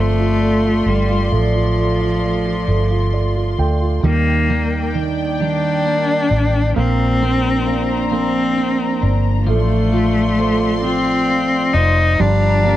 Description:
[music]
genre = six-eight pop ballad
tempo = 44 BPM (dotted quarters)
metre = 6/8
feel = straight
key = unclear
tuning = A4 = 440 Hz
[part]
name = clear cello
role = melody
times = 0.0-12.8 s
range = F3 to Eb4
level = -19 LUFS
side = left 2 dB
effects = none
[part]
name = dark grand piano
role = accompaniment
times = 0.0-12.8 s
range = Eb3 to G5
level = -22 LUFS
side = right 6 dB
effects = none
[part]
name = warm studio string section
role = sustained chords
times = 0.0-12.8 s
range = Eb3 to C6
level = -25 LUFS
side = left 1 dB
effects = none
[part]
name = vintage muted fingered electric bass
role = bass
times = 0.0-12.8 s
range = F1 to Eb2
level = -18 LUFS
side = equal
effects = none
[part]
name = twelve-string electric guitar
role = arpeggios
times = 4.0-12.8 s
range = F3 to D4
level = -25 LUFS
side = left 3 dB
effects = spring reverb
[sound]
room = little or no reverb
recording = dry, close 1970s-style studio recording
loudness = -14 LUFS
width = side -13 dB against mid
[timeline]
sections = 0.0-4.0 A section; 4.0-12.8 B section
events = grand piano fill 2.7-4.0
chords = 0.0 Dm7; 4.0 Ebmaj7; 6.8 Bbadd9; 9.5 Dm7/A; 12.2 Gm7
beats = | 1.32 2.68 | 4.04 5.40 | 6.76 8.12 | 9.48 10.84 | 12.20

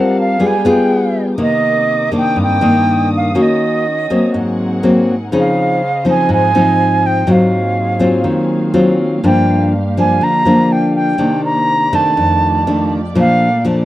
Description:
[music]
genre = bossa nova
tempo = 122 BPM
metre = 4/4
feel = straight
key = C minor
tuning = A4 = 441 Hz
[part]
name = reedy silver concert flute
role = melody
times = 0.0-13.6 s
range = Eb5 to Bb5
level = -16 LUFS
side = right 2 dB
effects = none
[part]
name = nylon-string guitar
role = accompaniment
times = 0.0-13.8 s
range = F2 to Bb4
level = -13 LUFS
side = left 1 dB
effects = none
[part]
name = muted studio string section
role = sustained chords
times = 0.0-13.8 s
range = A3 to Eb6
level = -25 LUFS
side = right 2 dB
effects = none
[sound]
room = little or no reverb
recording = dry, close 1970s-style studio recording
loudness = -11 LUFS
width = side -14 dB against mid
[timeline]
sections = 0.0-1.4 A section; 1.4-13.8 B section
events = flute solo 0.0-1.4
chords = 0.4 G7b9; 1.4 Cm9; 3.4 Ebm7; 4.3 Ab9; 5.3 Dbmaj9; 7.3 Ab13; 9.2 Gm7; 11.2 Cm9; 12.2 F13; 13.2 Bbmaj7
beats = 0.41 0.90 | 1.39 1.88 2.37 2.86 | 3.35 3.84 4.33 4.82 | 5.31 5.80 6.29 6.78 | 7.27 7.76 8.25 8.74 | 9.23 9.72 10.21 10.70 | 11.19 11.68 12.17 12.66 | 13.15 13.64

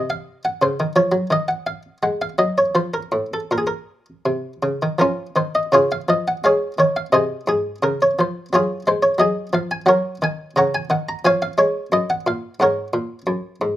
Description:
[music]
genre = classical, baroque-style suite movement for harpsichord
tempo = 79-90 BPM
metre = 3/4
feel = rubato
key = Bb minor, Db major from 5.7 s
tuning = A4 = 440 Hz
[part]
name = buff-stop harpsichord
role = solo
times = 0.0-13.8 s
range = Gb2 to Bb5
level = -17 LUFS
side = equal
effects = none
[sound]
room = light reverb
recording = none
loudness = -18 LUFS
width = side -14 dB against mid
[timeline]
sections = 0.0-5.7 A section; 5.7-13.8 A section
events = none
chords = 0.0 Adim7 (rootless); 0.6 Dbmaj9; 1.3 Ebm11; 2.8 F; 3.5 Bbm; 5.7 Db; 7.1 Ab/C; 7.8 Db; 9.9 Gb; 11.3 Db/F; 11.9 Gb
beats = 0.63 | 1.32 2.03 2.75 | 3.50 4.26 5.01 | 5.74 6.44 7.12 | 7.82 8.51 9.19 | 9.88 10.57 11.26 | 11.94 12.61 13.29

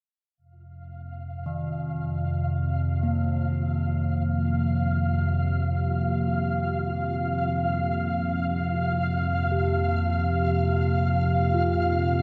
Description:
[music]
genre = ambient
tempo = free time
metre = none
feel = none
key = unclear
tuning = A4 = 438 Hz
[part]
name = dark analog pad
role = sustained chords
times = 0.4-12.2 s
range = F3 to G4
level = -40 LUFS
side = equal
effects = chorus
[part]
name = analog drone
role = drone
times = 0.8-12.2 s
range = F2 to C3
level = -27 LUFS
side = equal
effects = chorus
[part]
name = flickering grainy texture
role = texture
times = 1.0-12.2 s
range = F5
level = -33 LUFS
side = equal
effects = built-in reverb
[part]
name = quartz singing bowl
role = arpeggios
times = 1.5-12.2 s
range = Eb3 to G4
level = -34 LUFS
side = equal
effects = delay
[sound]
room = wet huge ambient reverb, RT60 7.1 s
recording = none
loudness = -26 LUFS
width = mono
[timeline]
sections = 0.4-12.2 A section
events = fade-in on analog synth pad 0.4-12.2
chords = 0.4 Fsus2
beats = free time

